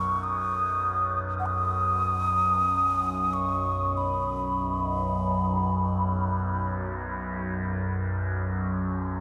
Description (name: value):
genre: world meditative, free-time meditation music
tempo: free time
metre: none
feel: none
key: B major pentatonic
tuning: A4 = 441 Hz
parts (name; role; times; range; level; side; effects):
- breathy mellow alto ocarina; melody; 0.0-6.7 s; F#5 to D#6; -29 LUFS; equal; tape echo
- overtone-sweeping drone; drone; 0.0-9.2 s; B1 to F#2; -31 LUFS; equal; chorus, built-in reverb
room: wet huge ambient reverb, RT60 8.2 s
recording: dreamy mix soaked in reverb, cassette tape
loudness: -27 LUFS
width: mono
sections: 0.0-9.2 A section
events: none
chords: none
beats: free time